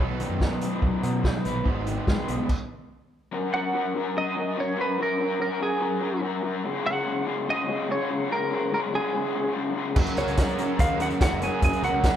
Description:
indie rock; 145 BPM; 4/4; straight; F# major; A4 = 442 Hz
overdriven electric guitar; riff; 0.0-2.5, 10.0-12.2 s; F#2 to F#4; -31 LUFS; right 6 dB
raw garage guitar; riff; 0.0-12.2 s; G#2 to B4; -28 LUFS; left 4 dB; overdrive, harmonic tremolo
growling fingered electric bass; bass; 0.0-2.4, 10.0-12.1 s; F#1 to B2; -31 LUFS; equal; overdrive
vintage drum kit; drums; 0.2-2.6, 10.0-12.1 s; crash cymbal, hi-hat, kick drum, snare drum; -25 LUFS; equal
mellow tonewheel organ; sustained chords; 3.3-12.2 s; G#4 to C#6; -37 LUFS; right 2 dB; slow rotary speaker
twelve-string electric guitar; melody; 3.5-12.2 s; G#4 to G#5; -27 LUFS; right 2 dB
clear trumpet; second line; 10.2-12.2 s; C#4 to G#4; -39 LUFS; right 5 dB
moderate large studio reverb, RT60 1.3 s; band playing live in one room; -23 LUFS; side -10 dB against mid
0.0-3.3 A section; 3.3-12.2 B section
stop 2.5-3.3
0.0 B; 1.7 G#m; 3.3 F#add9; 6.7 C#sus4; 10.0 F#add9
0.41 0.82 1.24 | 1.66 2.08 2.50 2.91 | 3.33 3.75 4.16 4.58 | 4.99 5.41 5.82 6.24 | 6.65 7.07 7.48 7.89 | 8.31 8.72 9.14 9.55 | 9.97 10.38 10.79 11.21 | 11.62 12.04

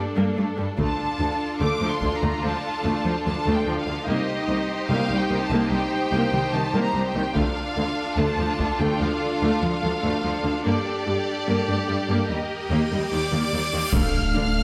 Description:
cinematic, hybrid orchestral and electronic film score; 73 BPM; 4/4; straight; D phrygian; A4 = 440 Hz
clear symphonic violin section; second line; 0.0-14.6 s; D4 to F5; -32 LUFS; equal
rich symphonic viola section; accompaniment; 0.0-14.4 s; D3 to A4; -29 LUFS; equal
tight sequenced synth; arpeggios; 0.0-14.5 s; C3 to G4; -34 LUFS; equal; chorus, phaser, tape echo
clear studio cello section; bass; 0.0-14.4 s; C2 to G2; -30 LUFS; equal
warm symphonic violin section; melody; 0.8-14.6 s; D5 to F6; -32 LUFS; equal
taiko ensemble; drums; 0.8-2.4, 7.4-9.0, 13.9-14.6 s; -31 LUFS; equal
cymbal swell and impact; sound effects; 12.5-14.6 s; -34 LUFS; equal
mellow French horn section; sustained chords; 13.9-14.6 s; A3 to D4; -30 LUFS; equal
rich studio double bass section; bass; 13.9-14.4 s; D2; -35 LUFS; equal
sub bass with octave; bass; 13.9-14.6 s; D1; -28 LUFS; equal
wet scoring stage reverb, RT60 1.6 s; -24 LUFS; mono
0.0-13.9 A section
cymbal swell 12.5-13.9; impact 13.9-14.6
0.0 Gmadd9; 0.8 Dm; 4.1 Cm7; 7.4 Dm; 10.7 Gmadd9; 12.3 Eb; 13.9 Dm
| 0.79 1.61 2.44 3.26 | 4.08 4.90 5.72 6.54 | 7.37 8.19 9.01 9.83 | 10.65 11.48 12.30 13.12 | 13.94

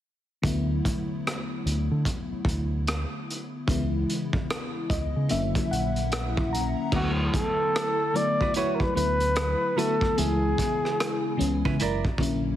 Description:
R&B, neo-soul; 74 BPM; 4/4; swing 63% on 16ths; D major; A4 = 442 Hz
FM electric piano with soft pad layer; accompaniment; 0.4-12.6 s; C#3 to A#5; -29 LUFS; left 2 dB; chorus
deep dub fingered electric bass; bass; 0.4-12.6 s; F#1 to D3; -28 LUFS; equal
crunchy breakbeat drum kit; drums; 0.4-12.4 s; crash cymbal, hi-hat, kick drum, rim click; -30 LUFS; equal
mellow flugelhorn; melody; 7.0-11.8 s; F#4 to D5; -26 LUFS; equal; slapback echo
archtop guitar, miked and amplified; second line; 8.4-12.0 s; C#4 to D5; -32 LUFS; right 8 dB
light reverb, small room ambience; heavily compressed radio sound; -24 LUFS; side -12 dB against mid
0.4-6.9 A section; 6.9-12.6 B section
FM electric piano fill 4.5-6.9
0.4 D69; 3.7 C#m7; 5.3 F#7b13; 6.9 D69; 10.2 C#m7; 11.8 F#7b13
| 0.43 1.25 2.06 2.87 | 3.68 4.49 5.30 6.11 | 6.92 7.73 8.54 9.35 | 10.16 10.98 11.79

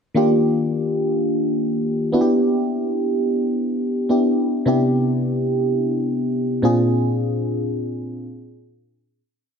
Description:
pop; free time; A4 = 440 Hz
FM electric piano; solo; 0.1-9.2 s; Bb2 to Ab4; -18 LUFS; equal; wide subtle chorus
wet plate reverb, RT60 2.6 s; dark, warm production; -18 LUFS; side -6 dB against mid
0.2-9.2 verse
fade-out 6.9-9.2
0.2 Ebmaj7; 2.1 Em7; 4.7 Cmaj9; 6.6 Bb9
free time

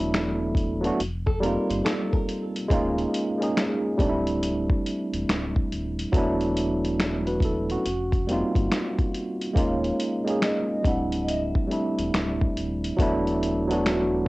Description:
lo-fi hip hop; 70 BPM; 4/4; swing 64% on 16ths; A4 = 435 Hz
tine electric piano; accompaniment; 0.0-14.3 s; F#3 to B4; -25 LUFS; right 1 dB; medium stereo tremolo, cassette tape, low-pass filter
sub bass with octave; bass; 0.0-14.2 s; D1 to G1; -32 LUFS; equal
lo-fi sampler-style drum kit; drums; 0.1-14.1 s; finger snaps, hi-hat, kick drum, snare drum; -26 LUFS; equal; vintage 12-bit sampler grit
flamenco guitar; second line; 1.3-2.7 s; A4 to C5; -33 LUFS; left 1 dB; low-pass filter, analog delay
vibraphone with soft mallets; melody; 9.6-12.5 s; Db5 to Gb5; -32 LUFS; equal; low-pass filter, cassette tape, analog delay
light reverb; home recording on cassette; -23 LUFS; side -21 dB against mid
0.0-14.3 A section
0.0 E9sus4; 1.0 F9sus4; 2.7 Eb9sus4; 4.0 D9sus4; 6.1 E9sus4; 7.8 F9sus4; 9.6 Eb9sus4; 10.8 D9sus4; 13.0 E9sus4
0.13 0.99 1.85 | 2.70 3.56 4.42 5.28 | 6.13 6.99 7.85 8.70 | 9.56 10.42 11.28 12.13 | 12.99 13.85

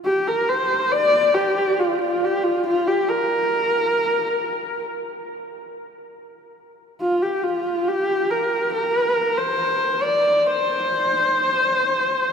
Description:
mongolian traditional; 69 BPM; 4/4; straight; A4 = 440 Hz
rich horsehead fiddle; solo; 0.1-12.3 s; F4 to D5; -19 LUFS; equal
wet cathedral reverb, RT60 5.8 s; in a vast, echoing space; -18 LUFS; side -6 dB against mid
0.0-12.3 A section
| 0.05 0.92 1.79 2.66 | 3.53 4.40 5.27 6.14 | 7.01 7.88 8.75 9.62 | 10.49 11.36 12.23

